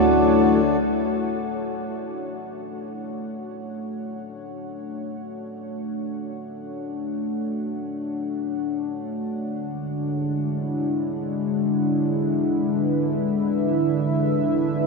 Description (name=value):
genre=ambient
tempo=free time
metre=none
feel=none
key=D lydian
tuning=A4 = 440 Hz
part: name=warm analog pad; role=sustained chords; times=0.0-14.9 s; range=D3 to F#5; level=-22 LUFS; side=left 1 dB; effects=chorus
part: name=deep rumbling drone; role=bass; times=0.0-0.6 s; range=D2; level=-34 LUFS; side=equal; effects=built-in reverb
part: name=pedal harmonium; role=drone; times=0.0-0.8 s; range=D3 to D4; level=-28 LUFS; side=left 1 dB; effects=none
room=wet huge ambient reverb, RT60 7.6 s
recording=nothing above 7.6 kHz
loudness=-22 LUFS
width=side -3 dB against mid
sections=0.7-14.9 A section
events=fade-in on analog synth pad 0.7-14.9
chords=0.0 F#m7/D; 0.7 Dmaj7; 9.2 E7/D